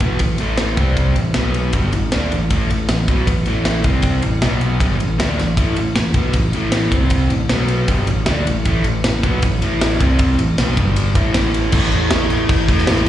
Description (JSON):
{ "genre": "hard rock", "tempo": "156 BPM", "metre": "4/4", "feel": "straight", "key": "A minor", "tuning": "A4 = 440 Hz", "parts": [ { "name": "overdriven semi-hollow guitar", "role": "riff", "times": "0.0-13.1 s", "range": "G2 to D4", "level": "-19 LUFS", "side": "equal", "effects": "slapback echo" }, { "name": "overdriven picked electric bass", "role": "bass", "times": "0.0-13.1 s", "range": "G1 to E2", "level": "-19 LUFS", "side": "equal", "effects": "none" }, { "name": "tight metal drum kit", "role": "drums", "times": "0.0-13.1 s", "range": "crash cymbal, kick drum, ride cymbal, snare drum", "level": "-19 LUFS", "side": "equal", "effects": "none" } ], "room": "small room reverb", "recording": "live gig heard through the venue's PA, recital hall reverb, nothing above 10.9 kHz", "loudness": "-14 LUFS", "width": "side -12 dB against mid", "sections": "0.0-11.7 A section; 11.7-13.1 B section", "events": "none", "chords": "0.0 A5; 0.8 C5; 1.2 A5; 1.4 B5; 1.7 A5; 3.9 C5; 4.2 A5; 4.4 B5; 4.8 A5; 6.9 C5; 7.3 A5; 7.5 B5; 7.9 A5; 10.0 C5; 10.4 A5; 10.8 G5; 11.2 A5", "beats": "0.20 0.58 | 0.97 1.35 1.74 2.12 | 2.51 2.89 3.27 3.66 | 4.04 4.43 4.81 5.20 | 5.58 5.96 6.35 6.73 | 7.12 7.50 7.89 8.27 | 8.65 9.04 9.42 9.81 | 10.19 10.58 10.96 11.35 | 11.73 12.11 12.50 12.88" }